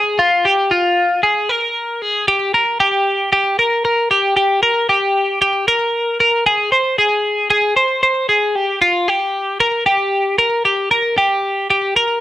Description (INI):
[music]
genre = indie pop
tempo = 115 BPM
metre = 4/4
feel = straight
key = unclear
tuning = A4 = 442 Hz
[part]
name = twelve-string electric guitar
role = solo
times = 0.0-12.2 s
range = F4 to C5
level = -13 LUFS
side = equal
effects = slapback echo
[sound]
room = light reverb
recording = dark, warm production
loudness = -13 LUFS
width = side -14 dB against mid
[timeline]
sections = 0.0-10.7 A section; 10.7-12.2 B section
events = none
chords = none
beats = | 0.19 0.71 1.23 1.75 | 2.28 2.80 3.33 3.85 | 4.37 4.89 5.42 5.94 | 6.46 6.99 7.51 8.03 | 8.56 9.08 9.60 10.13 | 10.65 11.18 11.70